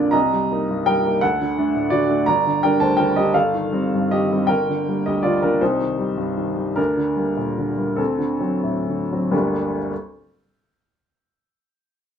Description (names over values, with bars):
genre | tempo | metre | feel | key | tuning
classical, romantic character piece for solo piano | 42-58 BPM (dotted quarters) | 6/8 | rubato | G minor | A4 = 440 Hz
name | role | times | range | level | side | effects
warm upright piano | solo | 0.0-9.9 s | G1 to Bb5 | -18 LUFS | equal | none
room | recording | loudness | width
light reverb | minimal, uncompressed stereo recording | -18 LUFS | side -8 dB against mid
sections
0.0-9.3 A section; 9.3-11.9 B section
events
slowing down 3.3-9.3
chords
0.1 Cm7; 1.2 D; 2.3 Gm; 3.3 Cm/G; 4.5 Gm; 5.6 Cm; 6.8 Gm/D; 8.0 D7; 9.3 Gm